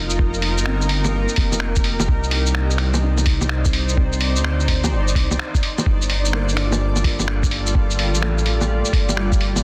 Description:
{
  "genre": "future garage",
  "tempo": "127 BPM",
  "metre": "4/4",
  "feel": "swing 66% on 16ths",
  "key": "unclear",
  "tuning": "A4 = 437 Hz",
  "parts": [
    { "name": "felt-muted upright piano", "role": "accompaniment", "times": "0.0-9.6 s", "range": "G3 to F4", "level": "-32 LUFS", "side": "equal", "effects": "sidechain pumping, tape echo" },
    { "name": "granular cloud pad", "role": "sustained chords", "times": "0.0-9.6 s", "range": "G3 to D5", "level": "-29 LUFS", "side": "equal", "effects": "built-in reverb, sidechain pumping" },
    { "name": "dark detuned saw bass", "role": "bass", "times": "0.0-9.6 s", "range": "F1 to D2", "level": "-23 LUFS", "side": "equal", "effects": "sidechain pumping" },
    { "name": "lo-fi sampler-style drum kit", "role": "drums", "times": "0.1-9.6 s", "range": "bongos, finger snaps, hi-hat, shaker", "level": "-26 LUFS", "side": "equal", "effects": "soft clipping on snare" },
    { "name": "electronic kick drum", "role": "drums", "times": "0.2-9.4 s", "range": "none", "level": "-22 LUFS", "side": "equal", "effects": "none" }
  ],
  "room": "little or no reverb",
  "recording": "dense, heavily limited modern master",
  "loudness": "-19 LUFS",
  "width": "mono",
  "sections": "0.0-9.6 A section",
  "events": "none",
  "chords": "0.0 F7sus4; 2.1 Cmadd9; 5.9 Gm7",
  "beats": "| 0.19 0.66 1.14 1.61 | 2.08 2.55 3.03 3.50 | 3.97 4.44 4.92 5.39 | 5.86 6.33 6.80 7.28 | 7.75 8.22 8.70 9.17"
}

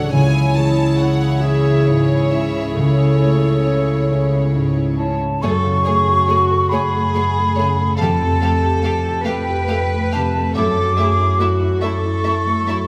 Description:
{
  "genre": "cinematic",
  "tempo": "47 BPM (dotted quarters)",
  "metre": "6/8",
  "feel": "rubato",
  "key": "A major",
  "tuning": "A4 = 441 Hz",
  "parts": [
    { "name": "warm studio violin section", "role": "melody", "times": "0.0-12.8 s", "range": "C#5 to F5", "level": "-32 LUFS", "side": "equal", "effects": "none" },
    { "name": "clear studio violin section", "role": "second line", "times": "0.0-12.8 s", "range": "E4 to A5", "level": "-32 LUFS", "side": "equal", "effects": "none" },
    { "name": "dark clarinet", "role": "second line", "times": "0.0-4.9 s", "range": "E4 to A4", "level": "-26 LUFS", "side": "equal", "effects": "none" },
    { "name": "dark studio viola section", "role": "accompaniment", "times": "0.0-12.7 s", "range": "A3 to G#4", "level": "-29 LUFS", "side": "equal", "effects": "none" },
    { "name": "warm grand piano", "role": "accompaniment", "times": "0.0-12.9 s", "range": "C#2 to C#5", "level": "-23 LUFS", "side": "equal", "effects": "none" },
    { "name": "concert harp", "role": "arpeggios", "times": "0.0-12.9 s", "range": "F2 to G#5", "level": "-30 LUFS", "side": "equal", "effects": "none" },
    { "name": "dark studio double bass section", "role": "bass", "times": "0.0-12.9 s", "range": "C#2 to F#2", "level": "-25 LUFS", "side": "equal", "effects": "none" },
    { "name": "warm studio cello section", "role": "bass", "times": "0.0-12.9 s", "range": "C#3 to B4", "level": "-24 LUFS", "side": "equal", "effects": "none" },
    { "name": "hollow concert flute", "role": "second line", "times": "5.0-12.9 s", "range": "G5 to D6", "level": "-22 LUFS", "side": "equal", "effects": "none" }
  ],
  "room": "moderate scoring stage reverb, RT60 2.0 s",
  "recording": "none",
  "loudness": "-17 LUFS",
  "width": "mono",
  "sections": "0.0-5.4 A section; 5.4-12.9 B section",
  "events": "none",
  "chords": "0.1 Amaj7/C#; 5.4 F#madd9; 8.0 Fadd9; 10.6 Dadd9/F#",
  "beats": "| 0.14 1.43 | 2.76 4.09 | 5.42 6.71 | 7.98 9.25 | 10.56 11.82"
}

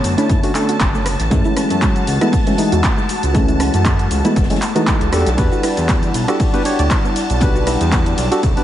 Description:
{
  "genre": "deep house",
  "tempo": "118 BPM",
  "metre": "4/4",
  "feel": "swing 55% on 16ths",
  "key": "unclear",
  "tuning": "A4 = 438 Hz",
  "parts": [
    { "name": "airy breathy pad", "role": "sustained chords", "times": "0.0-8.6 s", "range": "D3 to A5", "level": "-25 LUFS", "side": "equal", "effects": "chorus, sidechain pumping" },
    { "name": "percussive organ stab", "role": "stabs", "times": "0.0-8.6 s", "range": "E3 to C#5", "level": "-19 LUFS", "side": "equal", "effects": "chorus, sidechain pumping, ping-pong delay" },
    { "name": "smooth synth bass", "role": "bass", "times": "0.0-8.5 s", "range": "E1 to F#2", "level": "-19 LUFS", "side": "equal", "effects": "sidechain pumping" },
    { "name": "deep house drum kit", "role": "drums", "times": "0.0-8.6 s", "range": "handclaps, hi-hat, ride cymbal, rim click, shaker", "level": "-24 LUFS", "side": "equal", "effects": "overdrive" },
    { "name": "open jazz drum kit", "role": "drums", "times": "0.0-8.6 s", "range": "hi-hat, snare drum", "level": "-36 LUFS", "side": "left 3 dB", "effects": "none" },
    { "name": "string machine, violins", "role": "texture", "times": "0.0-8.6 s", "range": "A5", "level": "-28 LUFS", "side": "equal", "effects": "ensemble chorus, sidechain pumping" },
    { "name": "soft round pluck", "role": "arpeggios", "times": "0.2-8.6 s", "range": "G#3 to D5", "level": "-25 LUFS", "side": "right 2 dB", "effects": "none" },
    { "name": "electronic kick drum", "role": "drums", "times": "0.3-8.5 s", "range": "none", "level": "-18 LUFS", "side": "equal", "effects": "none" }
  ],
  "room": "moderate lush hall reverb, RT60 1.9 s",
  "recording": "dreamy mix soaked in reverb, vinyl crackle, nothing above 10.8 kHz",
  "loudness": "-13 LUFS",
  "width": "side -12 dB against mid",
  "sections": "0.0-8.6 A section",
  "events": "none",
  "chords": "0.0 Bm9; 1.3 F#m9; 5.1 Em9",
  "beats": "0.29 0.80 | 1.31 1.82 2.33 2.84 | 3.35 3.85 4.36 4.87 | 5.38 5.89 6.40 6.91 | 7.41 7.92 8.43"
}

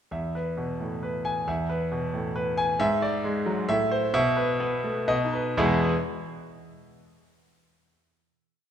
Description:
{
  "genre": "classical, virtuoso piano study",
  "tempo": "117-138 BPM",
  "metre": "3/4",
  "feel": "rubato",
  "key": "E major",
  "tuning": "A4 = 440 Hz",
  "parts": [
    { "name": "clear concert grand piano", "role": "solo", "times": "0.1-5.9 s", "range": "E2 to G#5", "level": "-24 LUFS", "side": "equal", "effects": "none" }
  ],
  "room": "moderate concert hall reverb, RT60 2.2 s",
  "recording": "minimal, uncompressed stereo recording",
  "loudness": "-24 LUFS",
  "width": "side -9 dB against mid",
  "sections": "0.1-5.6 A section; 5.6-7.0 final chord",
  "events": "none",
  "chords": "0.1 E; 2.8 E7/G#; 3.7 Am; 4.1 E5/B; 5.1 B; 5.6 E",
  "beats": "| 0.12 0.58 1.03 | 1.48 1.92 2.36 | 2.80 3.24 3.68 | 4.13 4.59 5.07 | 5.57"
}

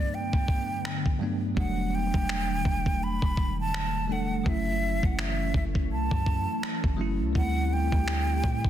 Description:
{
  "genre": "contemporary R&B",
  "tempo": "83 BPM",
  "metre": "4/4",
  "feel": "swing 58% on 16ths",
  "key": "E minor",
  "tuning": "A4 = 443 Hz",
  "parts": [
    { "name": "breathy concert flute", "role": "melody", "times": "0.0-8.7 s", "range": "D5 to B5", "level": "-32 LUFS", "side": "right 2 dB", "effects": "ping-pong delay" },
    { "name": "bell-like tine electric piano", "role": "accompaniment", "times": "0.0-8.7 s", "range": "G2 to A4", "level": "-32 LUFS", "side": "right 1 dB", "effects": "fast stereo tremolo" },
    { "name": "ethereal airy pad", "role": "sustained chords", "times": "0.0-8.7 s", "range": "D3 to G4", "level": "-36 LUFS", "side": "equal", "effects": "ensemble chorus, built-in reverb, sidechain pumping" },
    { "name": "dusty soul sampler-style drum kit", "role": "drums", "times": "0.3-8.7 s", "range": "finger snaps, kick drum", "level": "-28 LUFS", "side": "equal", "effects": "soft clipping on snare" },
    { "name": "warm 808-style bass", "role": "bass", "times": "1.6-8.7 s", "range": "E1 to A2", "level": "-30 LUFS", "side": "equal", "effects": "none" }
  ],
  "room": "little or no reverb",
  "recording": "dense, heavily limited modern master",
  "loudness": "-25 LUFS",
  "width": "side -11 dB against mid",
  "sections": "0.0-8.7 A section",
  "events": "none",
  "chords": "0.0 Gmaj7; 1.6 Em11; 4.5 F#m7; 7.4 D7sus4",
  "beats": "0.12 0.84 | 1.57 2.29 3.01 3.74 | 4.46 5.18 5.91 6.63 | 7.35 8.07"
}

